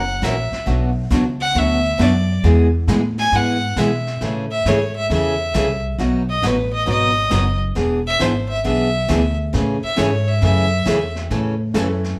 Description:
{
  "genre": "country, western swing",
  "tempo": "135 BPM",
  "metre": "4/4",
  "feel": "swing 67% on 8ths",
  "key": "A major",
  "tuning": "A4 = 440 Hz",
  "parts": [
    { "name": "clear fiddle", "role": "second line", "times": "0.0-11.1 s", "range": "B4 to G#5", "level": "-24 LUFS", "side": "equal", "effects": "none" },
    { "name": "upright bass", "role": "bass", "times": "0.0-12.2 s", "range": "E1 to B2", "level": "-22 LUFS", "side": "equal", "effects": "none" },
    { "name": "picked steel-string acoustic guitar", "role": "accompaniment", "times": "0.2-11.9 s", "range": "B2 to A#4", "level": "-23 LUFS", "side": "equal", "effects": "none" },
    { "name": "jazz brush drum kit", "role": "drums", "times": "0.2-12.2 s", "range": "brushed snare drum, hi-hat, snare drum", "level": "-33 LUFS", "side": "equal", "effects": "none" },
    { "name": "bright upright piano", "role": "accompaniment", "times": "11.7-12.2 s", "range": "E3 to A4", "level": "-28 LUFS", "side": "equal", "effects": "none" }
  ],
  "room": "moderate large studio reverb, RT60 0.9 s",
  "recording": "band playing live in one room",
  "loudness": "-18 LUFS",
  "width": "mono",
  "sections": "0.0-12.2 A section",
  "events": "fiddle solo 0.0-12.2",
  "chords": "0.0 F#7; 0.7 Bm; 2.4 E; 4.2 Amaj7; 6.0 B; 7.8 E7; 9.5 Amaj7; 11.3 A"
}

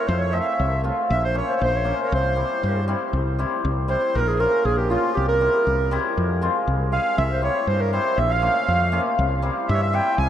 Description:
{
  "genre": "klezmer",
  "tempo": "119 BPM",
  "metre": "2/4",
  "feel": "straight",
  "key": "C phrygian dominant",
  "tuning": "A4 = 442 Hz",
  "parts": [
    { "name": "mellow clarinet", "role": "melody", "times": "0.0-10.3 s", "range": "F4 to Ab5", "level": "-24 LUFS", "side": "right 2 dB", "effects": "tape echo" },
    { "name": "accordion", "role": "second line", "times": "0.0-10.3 s", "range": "F4 to Ab5", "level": "-29 LUFS", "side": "equal", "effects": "none" },
    { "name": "woody fretless electric bass", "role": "bass", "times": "0.1-10.3 s", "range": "Bb1 to G2", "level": "-23 LUFS", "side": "equal", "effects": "none" },
    { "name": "cimbalom", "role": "accompaniment", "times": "0.3-10.2 s", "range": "G3 to Ab4", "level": "-26 LUFS", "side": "left 3 dB", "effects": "none" }
  ],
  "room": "wet huge ambient reverb, RT60 8.2 s",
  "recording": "dreamy mix soaked in reverb, lossy compression artefacts",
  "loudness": "-19 LUFS",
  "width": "side -10 dB against mid",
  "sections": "0.0-3.1 A section; 3.1-10.3 B section",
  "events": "clarinet solo 3.1-10.3",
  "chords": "0.0 F; 1.1 Bbm; 2.1 C; 4.1 Bbm; 5.2 C; 6.2 Fm; 7.2 C; 8.2 Bbm; 9.2 C"
}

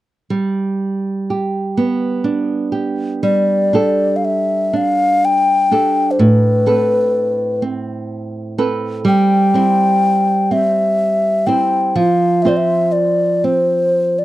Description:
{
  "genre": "celtic folk, Celtic slow air",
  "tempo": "41 BPM (dotted quarters)",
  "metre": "6/8",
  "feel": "uneven beats, rubato",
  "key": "G mixolydian",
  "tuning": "A4 = 440 Hz",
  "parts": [
    { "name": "flamenco guitar", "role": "accompaniment", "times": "0.3-14.2 s", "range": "A2 to C5", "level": "-17 LUFS", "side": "right 3 dB", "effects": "none" },
    { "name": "breathy mellow alto ocarina", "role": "melody", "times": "3.2-14.2 s", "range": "B4 to G5", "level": "-14 LUFS", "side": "left 2 dB", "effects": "none" }
  ],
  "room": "little or no reverb",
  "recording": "dry, close 1970s-style studio recording",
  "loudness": "-13 LUFS",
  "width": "side -15 dB against mid",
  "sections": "0.3-3.2 A section; 3.2-14.2 B section",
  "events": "none",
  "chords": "0.3 G; 3.2 Gsus2; 6.2 Amadd9; 9.1 C/G; 11.9 F5"
}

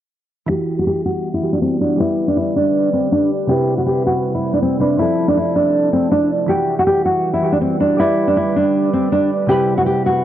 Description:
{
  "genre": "hip hop",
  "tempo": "160 BPM",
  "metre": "4/4",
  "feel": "half-time",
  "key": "E minor",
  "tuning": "A4 = 440 Hz",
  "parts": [
    { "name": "nylon-string guitar", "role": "melody", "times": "0.5-10.2 s", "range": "C4 to G4", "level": "-16 LUFS", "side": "equal", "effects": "low-pass filter" },
    { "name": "soft electric-piano-like synth keys", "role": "accompaniment", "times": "0.5-10.2 s", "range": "C3 to D5", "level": "-22 LUFS", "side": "right 2 dB", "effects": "chorus, low-pass filter" },
    { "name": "warbly tape-like pad", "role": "sustained chords", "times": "0.5-10.2 s", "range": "C3 to F#5", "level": "-25 LUFS", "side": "equal", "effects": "chorus, built-in reverb, low-pass filter" }
  ],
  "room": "light reverb, studio ambience",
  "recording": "dry, gritty hardware recording, cassette tape",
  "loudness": "-14 LUFS",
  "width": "side -11 dB against mid",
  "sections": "0.5-10.2 A section",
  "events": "filter sweep 0.5-10.2",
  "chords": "0.5 Emadd9; 2.0 G; 3.5 Cmaj7; 5.0 Fmaj7; 6.5 Emadd9; 8.0 G; 9.5 Cmaj7"
}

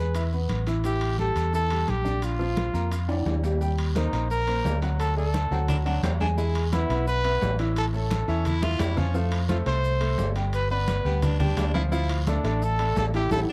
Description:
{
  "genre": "latin, salsa",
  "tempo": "173 BPM",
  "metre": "4/4",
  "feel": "straight",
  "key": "D minor",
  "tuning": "A4 = 439 Hz",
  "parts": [
    { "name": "clear trumpet", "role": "melody", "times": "0.0-13.4 s", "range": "D4 to C5", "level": "-31 LUFS", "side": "equal", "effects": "none" },
    { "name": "bright upright piano", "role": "accompaniment", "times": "0.0-13.4 s", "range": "E3 to G#5", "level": "-33 LUFS", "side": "equal", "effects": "none" },
    { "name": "fingered electric bass", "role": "bass", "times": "0.0-13.4 s", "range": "G1 to F2", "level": "-28 LUFS", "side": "equal", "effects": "none" },
    { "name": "guiro", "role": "percussion", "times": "0.1-13.4 s", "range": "none", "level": "-48 LUFS", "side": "equal", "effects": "none" },
    { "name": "maracas", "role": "percussion", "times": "0.1-13.4 s", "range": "none", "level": "-54 LUFS", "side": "equal", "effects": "none" },
    { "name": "timbales", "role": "percussion", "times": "0.1-13.4 s", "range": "none", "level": "-39 LUFS", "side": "equal", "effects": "none" },
    { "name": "congas", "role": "percussion", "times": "0.2-13.4 s", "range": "none", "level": "-35 LUFS", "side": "equal", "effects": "none" },
    { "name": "growling baritone saxophone", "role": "second line", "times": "5.5-13.5 s", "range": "A3 to F4", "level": "-37 LUFS", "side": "equal", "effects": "none" }
  ],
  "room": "light reverb",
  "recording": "dark, warm production",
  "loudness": "-25 LUFS",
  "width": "mono",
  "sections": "0.0-3.6 A section; 3.6-13.5 B section",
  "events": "drum fill 3.1-3.6, 8.6-9.1, 13.3; band accent 13.3",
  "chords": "0.0 E; 0.8 A5; 2.2 Bb; 3.6 Eb6; 5.0 D; 6.4 E; 7.8 A; 9.1 Fadd9; 10.5 G; 11.9 Dmadd9"
}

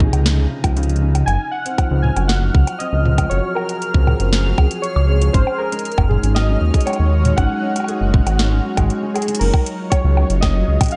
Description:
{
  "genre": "IDM",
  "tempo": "118 BPM",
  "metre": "4/4",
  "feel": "straight",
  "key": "Gb lydian",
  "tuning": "A4 = 440 Hz",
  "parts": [
    { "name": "warbly lo-fi synth keys", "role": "melody", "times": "0.0-11.0 s", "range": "Ab4 to Ab5", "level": "-27 LUFS", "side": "equal", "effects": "chorus, delay" },
    { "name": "soft string machine", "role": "sustained chords", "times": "0.0-11.0 s", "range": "Gb3 to Db5", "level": "-30 LUFS", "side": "equal", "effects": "ensemble chorus, sidechain pumping" },
    { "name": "felt-muted upright piano", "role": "arpeggios", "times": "0.0-9.4 s", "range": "C3 to Ab4", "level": "-29 LUFS", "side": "equal", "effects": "vintage 12-bit sampler grit, delay" },
    { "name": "dark detuned saw bass", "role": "bass", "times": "0.0-10.8 s", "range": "Gb1 to Eb2", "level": "-18 LUFS", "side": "equal", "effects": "none" },
    { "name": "electronic kick drum", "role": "drums", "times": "0.0-10.9 s", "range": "none", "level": "-18 LUFS", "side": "equal", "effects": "none" },
    { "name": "booming analog drum machine", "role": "drums", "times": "0.1-10.9 s", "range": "bongos, crash cymbal, hi-hat, snare drum, toms", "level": "-26 LUFS", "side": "equal", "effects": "none" },
    { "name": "bubbling stepped-filter texture", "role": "texture", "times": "1.3-9.4 s", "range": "F6", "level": "-33 LUFS", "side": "equal", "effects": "chorus, built-in reverb" }
  ],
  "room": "digital ambience",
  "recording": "dark, warm production, nothing above 10.4 kHz",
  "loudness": "-17 LUFS",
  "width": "mono",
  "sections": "0.0-9.4 A section; 9.4-11.0 B section",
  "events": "break 8.9-9.4; drum fill 9.2",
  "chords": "0.0 Db; 1.3 Gbmaj7; 5.3 Ab7sus4; 9.4 Gbmaj7"
}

